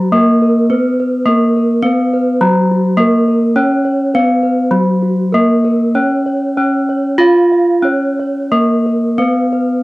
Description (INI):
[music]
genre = gamelan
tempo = 89-105 BPM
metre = 4/4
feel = straight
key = Bb pelog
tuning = A4 = 440 Hz
[part]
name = gamelan-type bronze metallophone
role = melody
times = 0.0-9.8 s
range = Gb3 to F4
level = -11 LUFS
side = equal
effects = cassette tape
[part]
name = gamelan-type bronze metallophone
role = arpeggios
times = 0.0-9.8 s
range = Gb4 to F5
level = -20 LUFS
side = right 2 dB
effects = cassette tape
[sound]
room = moderate spring reverb, RT60 1.7 s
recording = home recording on cassette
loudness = -11 LUFS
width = side -19 dB against mid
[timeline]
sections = 0.0-8.5 A section; 8.5-9.8 B section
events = none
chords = none